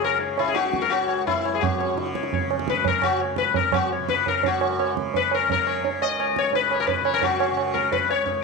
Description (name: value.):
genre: indian classical, Hindustani.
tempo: 171 BPM.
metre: 4/4.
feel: straight.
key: unclear.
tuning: A4 = 438 Hz.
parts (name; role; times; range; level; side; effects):
sitar; melody; 0.0-8.4 s; E4 to D#5; -22 LUFS; left 9 dB; none.
tanpura; drone; 0.0-8.4 s; C#2 to C#3; -32 LUFS; right 2 dB; none.
tabla; percussion; 0.0-8.4 s; none; -25 LUFS; right 12 dB; none.
room: light reverb, small room ambience.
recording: 1960s-style stereo with parts hard left and right.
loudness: -20 LUFS.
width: side -3 dB against mid.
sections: 0.0-4.4 A section; 4.4-8.4 B section.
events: speeding up 0.0-8.4.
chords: none.